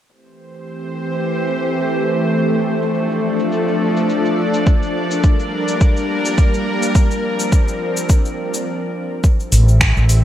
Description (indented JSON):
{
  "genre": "organic downtempo",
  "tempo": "105 BPM",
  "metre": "4/4",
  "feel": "swing 56% on 16ths",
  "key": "unclear",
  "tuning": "A4 = 439 Hz",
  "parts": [
    { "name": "bowed-like drone", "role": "sustained chords", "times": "0.6-10.2 s", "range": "E3 to E5", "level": "-18 LUFS", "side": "equal", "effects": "built-in reverb, sidechain pumping" },
    { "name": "deep house drum kit", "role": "drums", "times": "0.1-10.2 s", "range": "cabasa, finger snaps, hi-hat", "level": "-24 LUFS", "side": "left 1 dB", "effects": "overdrive, low-pass filter on perc, low-pass filter on hats, low-pass filter on snare, gated reverb" },
    { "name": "electronic kick drum", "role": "drums", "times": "4.7-9.9 s", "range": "none", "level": "-13 LUFS", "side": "equal", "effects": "overdrive" },
    { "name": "fretless electric bass", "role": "bass", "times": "9.5-10.2 s", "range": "A1", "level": "-11 LUFS", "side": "equal", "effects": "sidechain pumping" }
  ],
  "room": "moderate plate reverb, RT60 1.7 s",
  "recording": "bright 1980s-style digital production",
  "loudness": "-15 LUFS",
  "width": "side -11 dB against mid",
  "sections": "0.1-9.2 A section; 9.2-10.2 B section",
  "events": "filter sweep on drum 0.1-9.2; stop 8.7-9.2",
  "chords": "0.1 Am7; 2.4 Dm; 4.7 Gm; 7.0 Bbadd9; 9.2 Am7",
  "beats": "| 0.10 0.67 1.24 1.81 | 2.38 2.95 3.52 4.10 | 4.67 5.24 5.81 6.38 | 6.95 7.53 8.10 8.67 | 9.24 9.81"
}